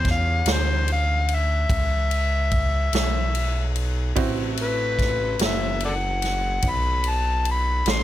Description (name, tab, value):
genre	slow blues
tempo	49 BPM (dotted quarters)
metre	12/8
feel	straight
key	unclear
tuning	A4 = 443 Hz
part	overdriven harmonica	melody	0.0-8.0 s	A4 to C6	-25 LUFS	left 3 dB	none
part	bright upright piano	accompaniment	0.0-8.0 s	C4 to B5	-33 LUFS	right 6 dB	none
part	smooth synth bass	bass	0.0-8.0 s	F#1 to E2	-24 LUFS	equal	none
part	swinging big-band drum kit	drums	0.0-8.0 s	kick drum, ride cymbal, snare drum	-26 LUFS	equal	none
room	little or no reverb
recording	none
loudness	-20 LUFS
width	side -13 dB against mid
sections	0.0-8.0 A section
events	harmonica solo 0.0-8.0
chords	0.0 A7 (rootless); 4.2 D7 (rootless)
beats	0.47 1.70 2.93 | 4.17 5.40 6.63 7.87